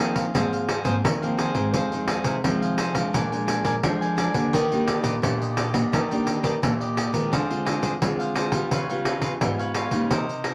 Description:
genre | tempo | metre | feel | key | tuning
samba and choro | 86 BPM | 4/4 | straight | Eb major | A4 = 440 Hz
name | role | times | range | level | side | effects
cavaquinho | accompaniment | 0.0-10.5 s | D4 to Ab5 | -32 LUFS | equal | none
nylon-string guitar | accompaniment | 0.0-10.5 s | F2 to F4 | -29 LUFS | equal | none
nylon-string guitar | bass | 0.0-10.5 s | F2 to Ab3 | -31 LUFS | equal | none
pandeiro | percussion | 0.2-10.5 s | none | -29 LUFS | equal | none
room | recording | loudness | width
wet small room ambience, RT60 0.5 s | none | -24 LUFS | mono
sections
0.0-10.5 A section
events
none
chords
0.0 Ab69; 1.7 Fm7; 3.1 Bb7; 4.5 Ebmaj7; 7.3 Dm7b5; 8.7 Db7#11

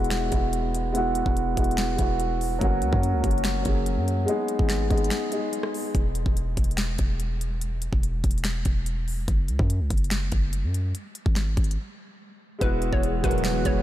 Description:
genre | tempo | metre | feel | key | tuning
hip hop, trap | 144 BPM | 4/4 | half-time | unclear | A4 = 440 Hz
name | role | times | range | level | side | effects
dark baby grand piano | accompaniment | 0.0-6.0, 12.6-13.8 s | F#3 to G#4 | -27 LUFS | equal | low-pass filter
hard-hitting 808-style bass | bass | 0.0-13.8 s | E1 to F#2 | -27 LUFS | equal | none
trap drum kit | drums | 0.0-13.8 s | finger snaps, hi-hat, kick drum, rim click, snare drum | -27 LUFS | equal | none
hollow square pluck | melody | 12.6-13.8 s | B4 to C#5 | -34 LUFS | left 1 dB | chorus, ping-pong delay
hollow clarinet-like synth lead | second line | 12.6-13.8 s | G#4 to B4 | -37 LUFS | right 4 dB | none
airy breathy pad | sustained chords | 13.0-13.8 s | E3 to F#4 | -31 LUFS | left 2 dB | chorus
big bright polysynth | stabs | 13.2-13.5 s | G#2 to F#3 | -31 LUFS | right 1 dB | chorus, phaser
room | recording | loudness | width
light reverb, digital ambience | none | -22 LUFS | side -13 dB against mid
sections
0.0-12.6 A section; 12.6-13.8 B section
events
filter sweep on grand piano 0.0-5.9; break 5.1-5.9, 11.8-12.6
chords
0.0 Eadd9; 2.6 F#; 4.3 G#m; 5.9 N.C.; 9.3 F#5; 10.9 N.C.; 12.6 Eadd9

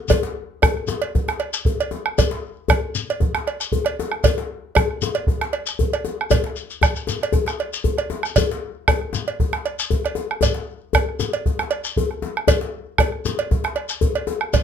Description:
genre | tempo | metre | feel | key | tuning
west african traditional, West African drum ensemble | 116 BPM | 4/4 | straight | none | none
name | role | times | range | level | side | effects
bombo | percussion | 0.1-14.6 s | none | -20 LUFS | right 2 dB | none
cowbell | percussion | 0.1-14.6 s | none | -22 LUFS | right 6 dB | none
djembe | percussion | 0.1-14.6 s | none | -24 LUFS | left 7 dB | none
shekere | percussion | 0.1-14.6 s | none | -26 LUFS | left 7 dB | none
room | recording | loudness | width
moderate studio reverb, RT60 0.5 s | faint mains hum | -19 LUFS | side -8 dB against mid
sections
0.1-14.6 A section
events
none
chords
none

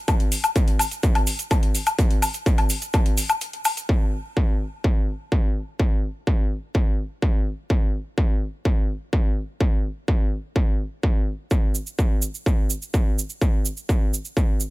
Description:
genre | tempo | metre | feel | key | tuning
techno | 126 BPM | 4/4 | straight | none | none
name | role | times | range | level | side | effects
electronic hi-hat and woodblock | drums | 0.1-3.9 s | none | -25 LUFS | left 3 dB | sidechain pumping on hats, sidechain pumping on perc
electronic kick drum | drums | 0.1-14.5 s | none | -20 LUFS | equal | distortion
cabasa | percussion | 0.1-3.9, 11.5-14.7 s | none | -30 LUFS | right 6 dB | none
room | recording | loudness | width
digital ambience | none | -20 LUFS | side -20 dB against mid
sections
0.0-3.9 A section; 3.9-14.7 B section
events
break 3.4-3.9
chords
none

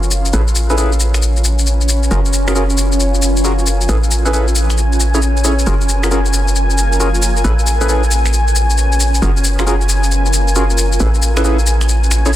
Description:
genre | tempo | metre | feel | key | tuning
UK garage, two-step garage | 135 BPM | 4/4 | swing 65% on 16ths | unclear | A4 = 441 Hz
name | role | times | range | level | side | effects
soft string machine | sustained chords | 0.1-12.4 s | G#5 | -26 LUFS | equal | ensemble chorus
hollow knocking FM bass | bass | 0.0-12.4 s | F#1 to A1 | -14 LUFS | equal | none
electronic shaker and finger snaps | drums | 0.0-12.4 s | none | -20 LUFS | left 3 dB | overdrive, soft clipping on snare
granular cloud pad | texture | 0.0-12.4 s | C#4 to G#5 | -21 LUFS | left 1 dB | built-in reverb
percussive organ stab | stabs | 0.3-12.3 s | C#4 to C#5 | -21 LUFS | equal | lush chorus, tape echo
room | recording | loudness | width
light reverb | dense, heavily limited modern master, faint mains hum | -12 LUFS | side -13 dB against mid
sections
0.0-12.4 A section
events
filter sweep on string machine 0.0-12.4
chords
0.3 Amaj9; 2.1 F#maj9; 3.9 Amaj9; 5.7 F#maj9; 7.4 Amaj9; 9.2 F#maj9; 11.0 Amaj9

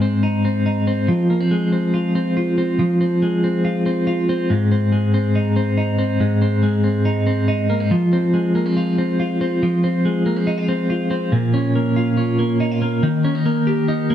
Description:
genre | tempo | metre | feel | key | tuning
indie pop | 141 BPM | 4/4 | straight | unclear | A4 = 440 Hz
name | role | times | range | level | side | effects
twelve-string electric guitar | solo | 0.0-14.1 s | Ab2 to G4 | -16 LUFS | equal | tremolo
room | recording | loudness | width
light reverb, digital ambience | dark, warm production | -16 LUFS | side -10 dB against mid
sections
0.0-11.3 A section; 11.3-14.1 B section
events
none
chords
0.0 Ab; 1.1 Fm; 4.5 Ab; 7.9 Fm; 11.3 Bbm; 13.0 Eb

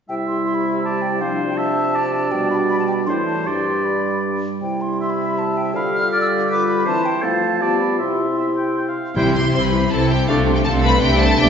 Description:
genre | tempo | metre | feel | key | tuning
quick classical-period movement for symphony orchestra | 160 BPM | 3/4 | straight | C major | A4 = 440 Hz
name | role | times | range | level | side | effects
mellow hollow silver concert flute | second line | 0.1-11.5 s | A4 to F6 | -24 LUFS | left 1 dB | none
warm clarinet | second line | 0.1-11.5 s | D4 to C5 | -27 LUFS | equal | none
warm oboe | second line | 0.1-11.5 s | B4 to A5 | -24 LUFS | right 2 dB | none
mellow bassoon | accompaniment | 0.1-11.5 s | G2 to A3 | -25 LUFS | equal | none
mellow French horn section | sustained chords | 0.1-11.5 s | E3 to F4 | -24 LUFS | equal | none
warm studio violin section | melody | 9.2-11.5 s | F5 to C6 | -21 LUFS | left 1 dB | none
warm studio violin section | second line | 9.2-11.5 s | F4 to C5 | -25 LUFS | left 3 dB | none
rich studio viola section | accompaniment | 9.2-11.5 s | E3 to G4 | -25 LUFS | right 1 dB | none
rich studio cello section | bass | 9.2-11.5 s | B2 to C3 | -21 LUFS | right 1 dB | none
rich studio double bass section | bass | 9.2-11.5 s | B1 to C2 | -20 LUFS | equal | none
timpani | percussion | 9.2-9.7 s | C3 | -25 LUFS | left 2 dB | none
room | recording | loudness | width
wet scoring stage reverb, RT60 1.8 s | recorded in a church or concert hall, nothing above 7.6 kHz | -17 LUFS | side -7 dB against mid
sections
0.1-9.2 A section; 9.2-11.5 B section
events
none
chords
0.1 C; 1.2 Dm7/C; 2.3 G/B; 3.1 Am; 3.5 G; 4.6 C; 5.7 G7/D; 6.9 C/E; 7.2 F; 7.6 G9; 8.0 C; 10.3 Dm7/C

